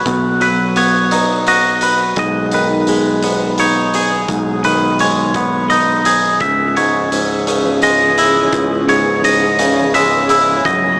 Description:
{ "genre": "post-rock", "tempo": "57 BPM (dotted quarters)", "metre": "6/8", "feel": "straight", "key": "C# minor", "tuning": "A4 = 440 Hz", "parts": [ { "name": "twangy electric guitar", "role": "arpeggios", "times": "0.0-11.0 s", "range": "C#2 to B4", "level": "-14 LUFS", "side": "equal", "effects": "phaser, digital delay" }, { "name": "twangy electric guitar", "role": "arpeggios", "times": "0.0-11.0 s", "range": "B4 to E5", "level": "-16 LUFS", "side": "equal", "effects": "digital delay" }, { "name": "growling fingered electric bass", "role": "bass", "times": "0.0-11.0 s", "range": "C#1 to B1", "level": "-22 LUFS", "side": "equal", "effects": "overdrive" }, { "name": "oversized low-tuned drum kit", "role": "drums", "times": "0.1-10.8 s", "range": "hi-hat, kick drum", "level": "-22 LUFS", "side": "equal", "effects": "none" }, { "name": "granular cloud pad", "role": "sustained chords", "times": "7.5-11.0 s", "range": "E3 to C#5", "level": "-20 LUFS", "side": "equal", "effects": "built-in reverb" } ], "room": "moderate concert hall reverb, RT60 2.0 s", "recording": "small speaker sound", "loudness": "-11 LUFS", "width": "side -40 dB against mid", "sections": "0.0-11.0 A section", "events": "none", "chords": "0.0 B; 2.2 G#m/B; 6.4 C#m", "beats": "| 0.07 1.13 | 2.19 3.25 | 4.31 5.37 | 6.42 7.48 | 8.54 9.60 | 10.66" }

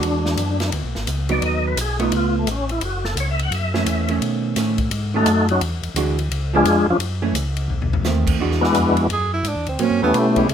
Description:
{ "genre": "soul jazz organ trio", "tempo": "172 BPM", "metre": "4/4", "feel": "swing 63% on 8ths", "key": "E mixolydian", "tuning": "A4 = 440 Hz", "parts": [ { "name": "percussive tonewheel organ", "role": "melody", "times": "0.0-10.5 s", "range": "E#3 to F#5", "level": "-19 LUFS", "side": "left 2 dB", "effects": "slow rotary speaker, overdrive, chorus vibrato" }, { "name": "vintage hollow-body jazz guitar", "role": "accompaniment", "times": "0.0-10.5 s", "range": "D#3 to F#4", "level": "-22 LUFS", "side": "right 5 dB", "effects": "none" }, { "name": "mellow tonewheel organ", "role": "bass", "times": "0.0-10.5 s", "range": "F#1 to C#3", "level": "-23 LUFS", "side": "equal", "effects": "slow rotary speaker" }, { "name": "swinging big-band drum kit", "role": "drums", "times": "0.0-10.5 s", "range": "crash cymbal, hi-hat, kick drum, ride cymbal, snare drum, toms", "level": "-26 LUFS", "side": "left 2 dB", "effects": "none" }, { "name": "clear tenor saxophone", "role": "melody", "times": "9.1-10.5 s", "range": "G#3 to G#4", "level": "-23 LUFS", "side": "right 3 dB", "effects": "none" } ], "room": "moderate club reverb, RT60 0.5 s", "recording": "minimal, uncompressed stereo recording", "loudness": "-18 LUFS", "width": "side -8 dB against mid", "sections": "0.0-8.4 A section; 8.4-10.5 A section", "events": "tonewheel organ solo 0.0-8.4; drum fill 7.7-8.1; tenor saxophone solo 8.4-10.5", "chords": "0.0 E9; 1.4 B7#11; 2.1 C#aug7; 2.8 F#m7; 4.2 B9; 5.6 E9; 6.3 C#7b9; 7.0 F#m7; 7.7 B7b9; 8.4 E9; 9.8 A9", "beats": "| 0.04 0.39 0.73 1.08 | 1.43 1.78 2.13 2.47 | 2.82 3.17 3.52 3.87 | 4.22 4.57 4.91 5.26 | 5.61 5.96 6.31 6.66 | 7.00 7.35 7.70 8.05 | 8.40 8.75 9.10 9.45 | 9.80 10.15 10.50" }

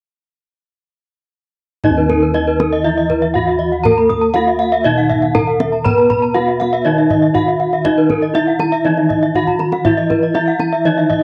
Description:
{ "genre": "Balinese gamelan", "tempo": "120 BPM", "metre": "4/4", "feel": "straight", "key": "Eb pelog", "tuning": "A4 = 440 Hz", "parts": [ { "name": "gamelan-type bronze metallophone", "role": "melody", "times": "1.8-11.2 s", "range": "Eb4 to Cb5-40c", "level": "-19 LUFS", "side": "equal", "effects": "none" }, { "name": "gamelan-type bronze metallophone", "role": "accompaniment", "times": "1.8-11.2 s", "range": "Eb3 to Cb4-40c", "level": "-26 LUFS", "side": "equal", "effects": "cassette tape" }, { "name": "gamelan-type bronze metallophone", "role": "arpeggios", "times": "1.8-11.0 s", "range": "Bb4-45c to Cb6-40c", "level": "-23 LUFS", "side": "equal", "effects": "cassette tape" }, { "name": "kendang", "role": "percussion", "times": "1.8-11.2 s", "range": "none", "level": "-25 LUFS", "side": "equal", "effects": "none" }, { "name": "gamelan-type bossed gongs", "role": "bass", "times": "1.9-11.2 s", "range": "Eb2 to Cb5-40c", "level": "-22 LUFS", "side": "equal", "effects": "none" }, { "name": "gamelan-type bronze metallophone", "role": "arpeggios", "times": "2.0-11.2 s", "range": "Bb4-45c to Eb6", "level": "-23 LUFS", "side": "equal", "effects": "cassette tape" } ], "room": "moderate spring reverb, RT60 1.3 s", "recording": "home recording on cassette, nothing above 10.6 kHz", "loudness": "-15 LUFS", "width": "mono", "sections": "1.8-11.2 A section", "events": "drum fill 9.3-9.8", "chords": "none", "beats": "| 1.85 2.35 2.85 3.35 | 3.85 4.35 4.85 5.35 | 5.85 6.35 6.85 7.35 | 7.85 8.35 8.85 9.35 | 9.85 10.35 10.85" }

